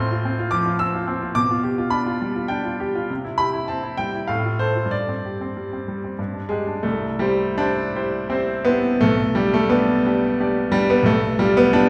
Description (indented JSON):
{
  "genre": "classical, romantic character piece for solo piano",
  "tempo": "77-111 BPM",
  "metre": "3/4",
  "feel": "rubato",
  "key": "C major",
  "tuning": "A4 = 440 Hz",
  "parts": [
    { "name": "clear grand piano", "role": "solo", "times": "0.0-11.9 s", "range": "B1 to E6", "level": "-21 LUFS", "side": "equal", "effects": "none" }
  ],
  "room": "wet recital hall reverb, RT60 1.4 s",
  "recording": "heard from further back in the room",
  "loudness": "-21 LUFS",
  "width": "mono",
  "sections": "0.0-6.8 A section; 6.8-11.9 B section",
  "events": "none",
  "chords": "0.0 F/A; 1.4 G7/B; 3.1 C; 4.3 F/A; 4.9 Gsus4; 6.2 G5; 6.8 C; 9.0 G/B; 11.1 G7/B"
}